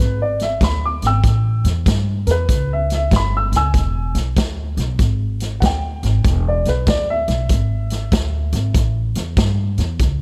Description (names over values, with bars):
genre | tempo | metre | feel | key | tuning
electric blues shuffle | 96 BPM | 4/4 | swing 65% on 8ths | E mixolydian | A4 = 444 Hz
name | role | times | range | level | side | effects
dark upright piano | accompaniment | 0.0-8.9 s | A#4 to E6 | -25 LUFS | equal | none
upright bass | bass | 0.0-10.2 s | E1 to G2 | -21 LUFS | equal | none
vintage drum kit | drums | 0.0-10.2 s | hi-hat, kick drum, snare drum | -22 LUFS | equal | none
room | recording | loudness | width
little or no reverb | none | -18 LUFS | mono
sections
0.0-10.2 A section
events
none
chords
0.0 E7; 1.2 A7; 3.7 E7; 8.8 A7